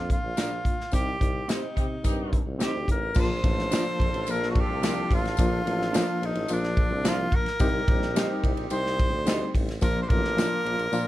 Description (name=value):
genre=uptempo 1960s-style soul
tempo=108 BPM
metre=4/4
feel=straight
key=Bb major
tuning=A4 = 441 Hz
part: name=breathy tenor saxophone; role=melody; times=0.0-11.1 s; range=D4 to C5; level=-30 LUFS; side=equal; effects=none
part: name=barky reed electric piano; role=accompaniment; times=0.0-11.1 s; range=F3 to Bb4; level=-31 LUFS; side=left 2 dB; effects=overdrive, fast tremolo
part: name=warm tuba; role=bass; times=0.0-11.1 s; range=A1 to C3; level=-32 LUFS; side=equal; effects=none
part: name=natural country drum kit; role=drums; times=0.1-10.9 s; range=crash cymbal, hi-hat, kick drum, ride cymbal, snare drum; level=-26 LUFS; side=equal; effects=none
part: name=electric guitar through a small old amp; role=stabs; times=0.4-10.5 s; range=C4 to Eb5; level=-36 LUFS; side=right 4 dB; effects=none
part: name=tambourine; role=percussion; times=0.4-11.1 s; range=none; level=-41 LUFS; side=left 6 dB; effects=none
part: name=mellow horn section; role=second line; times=1.8-11.1 s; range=Bb3 to A4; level=-38 LUFS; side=left 1 dB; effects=none
room=little or no reverb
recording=dark, warm production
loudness=-23 LUFS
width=side -15 dB against mid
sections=0.0-3.2 A section; 3.2-11.1 B section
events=drum fill 10.9; reed electric piano fill 10.9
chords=0.0 Bb; 0.9 Cm; 3.2 Bb; 7.6 Cm; 9.8 Bb